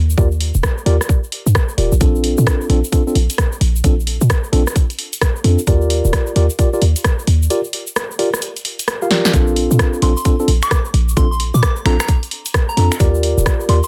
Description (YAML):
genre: UK garage, two-step garage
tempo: 131 BPM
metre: 4/4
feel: swing 63% on 16ths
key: Bb major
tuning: A4 = 439 Hz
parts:
  - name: short 808-style bass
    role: bass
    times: 0.0-13.8 s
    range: Eb1 to Bb2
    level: -16 LUFS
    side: equal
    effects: none
  - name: egg shaker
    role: percussion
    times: 0.1-13.9 s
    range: none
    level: -31 LUFS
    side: equal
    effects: none
  - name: mellow tine electric piano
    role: stabs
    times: 0.2-13.8 s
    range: C4 to F5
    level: -22 LUFS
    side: equal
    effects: dub echo
  - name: electronic kick drum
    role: drums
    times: 0.2-13.6 s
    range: none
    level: -18 LUFS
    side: equal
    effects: none
  - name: punchy analog drum machine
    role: drums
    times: 0.4-13.8 s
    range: finger snaps, hi-hat, rim click, snare drum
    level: -23 LUFS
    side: equal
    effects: none
  - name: soft synth bell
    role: melody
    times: 10.0-13.9 s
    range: Bb5 to D6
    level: -26 LUFS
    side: equal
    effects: chorus, phaser, dub echo
room: light reverb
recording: none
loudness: -16 LUFS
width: mono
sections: 0.0-13.9 A section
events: break 7.5-9.3; drum fill 9.1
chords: 0.0 Ebmaj9; 2.0 Bbmaj9; 5.7 Ebmaj9; 9.3 Bbmaj9; 13.0 Ebmaj9